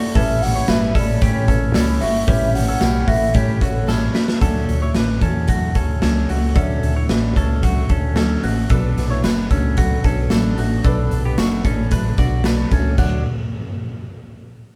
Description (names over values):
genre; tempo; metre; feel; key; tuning
jangly indie pop; 112 BPM; 4/4; straight; D major; A4 = 441 Hz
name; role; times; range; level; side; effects
hollow clarinet-like synth lead; melody; 0.0-4.1 s; C#5 to F#5; -26 LUFS; equal; chorus
dark upright piano; accompaniment; 0.0-13.2 s; C#4 to E5; -37 LUFS; equal; none
picked steel-string acoustic guitar; accompaniment; 0.0-13.2 s; A2 to E4; -30 LUFS; equal; none
direct-recorded clean electric guitar; arpeggios; 0.0-13.2 s; A3 to D5; -29 LUFS; equal; phaser
fingered electric bass; bass; 0.2-13.2 s; F#1 to A2; -23 LUFS; equal; none
raw garage drum kit; drums; 0.2-13.1 s; crash cymbal, hi-hat, kick drum, snare drum; -21 LUFS; equal; none
tambourine; percussion; 0.2-4.3, 8.7-13.2 s; none; -45 LUFS; equal; none
room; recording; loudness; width
moderate studio reverb, RT60 0.7 s; band playing live in one room; -18 LUFS; mono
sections
0.0-4.4 A section; 4.4-13.0 B section; 13.0-14.8 C section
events
drum fill 3.9-4.4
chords
0.0 A7; 4.4 Dmaj7; 8.7 Bm7; 13.0 Dmaj7